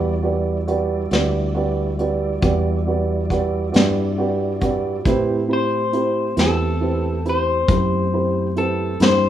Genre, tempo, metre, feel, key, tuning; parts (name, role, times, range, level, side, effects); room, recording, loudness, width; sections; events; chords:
slow blues; 46 BPM (dotted quarters); 12/8; straight; E minor; A4 = 440 Hz
dark grand piano; accompaniment; 0.0-9.3 s; E4 to B5; -22 LUFS; right 4 dB
mellow tonewheel organ; sustained chords; 0.0-9.3 s; G3 to D5; -30 LUFS; left 2 dB; chorus vibrato, slow rotary speaker
fingered electric bass; bass; 0.0-9.3 s; D2 to A2; -22 LUFS; equal
vintage brush drum kit; drums; 0.7-9.2 s; hi-hat, kick drum, snare drum; -20 LUFS; left 1 dB
electric guitar through a small old amp; melody; 5.5-9.3 s; A4 to C5; -22 LUFS; left 4 dB
studio reverb; rough home demo mix; -17 LUFS; side -11 dB against mid
0.0-9.3 A section
0.0 Em7; 5.1 Am7